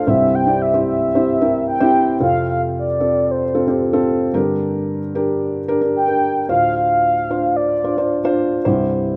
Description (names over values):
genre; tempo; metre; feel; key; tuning
pop; 112 BPM; 4/4; straight; F major; A4 = 440 Hz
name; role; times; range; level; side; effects
mellow horn-like synth lead; melody; 0.0-8.4 s; C5 to G5; -20 LUFS; equal; chorus
felt-muted upright piano; accompaniment; 0.0-9.2 s; C2 to D5; -20 LUFS; equal; none
room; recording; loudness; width
moderate lush hall reverb, RT60 2.5 s; rough home demo mix; -18 LUFS; mono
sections
0.0-2.2 A section; 2.2-9.2 B section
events
none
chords
0.1 C; 2.2 F; 4.4 Gm; 6.5 Dm7; 8.6 C